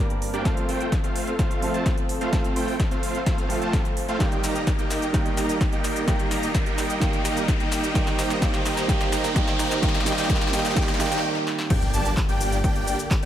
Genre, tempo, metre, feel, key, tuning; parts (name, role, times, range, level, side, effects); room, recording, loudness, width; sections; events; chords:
EDM, festival progressive house; 128 BPM; 4/4; straight; A4 = 439 Hz
dark grand piano; accompaniment; 0.0-11.7 s; G2 to Bb4; -29 LUFS; right 3 dB; sidechain pumping, dub echo
lush unison pad; sustained chords; 0.0-13.3 s; D3 to C5; -34 LUFS; equal; chorus, sidechain pumping
supersaw chords; riff; 0.0-13.3 s; A3 to Bb5; -28 LUFS; right 1 dB; sidechain pumping, low-pass filter, dub echo
riser and impact; sound effects; 1.0-13.3 s; -33 LUFS; left 1 dB
big-room dance drum kit; drums; 0.1-13.3 s; crash cymbal, handclaps, hi-hat, shaker, snare drum; -31 LUFS; left 1 dB; overdrive, high-pass filter on snare, high-pass filter on hats, high-pass filter on perc, high-pass filter on cymbals, high-pass filter on room
electronic kick drum; drums; 0.5-13.2 s; -24 LUFS; equal; overdrive
wide unison lead; arpeggios; 11.7-13.3 s; G5 to A5; -31 LUFS; equal; sidechain pumping, dub echo
detuned saw bass; bass; 11.7-13.3 s; G1; -28 LUFS; equal; sidechain pumping
light reverb; -21 LUFS; side -11 dB against mid
0.0-11.7 A section; 11.7-13.3 B section
build-up 0.0-11.7; drum fill 0.0-11.2, 11.4-11.7; riser 1.0-11.2; stop 11.2-11.7; drop 11.7-13.3; impact 11.7-13.3
0.5 F; 4.2 Eb; 8.0 Cm; 11.7 Gm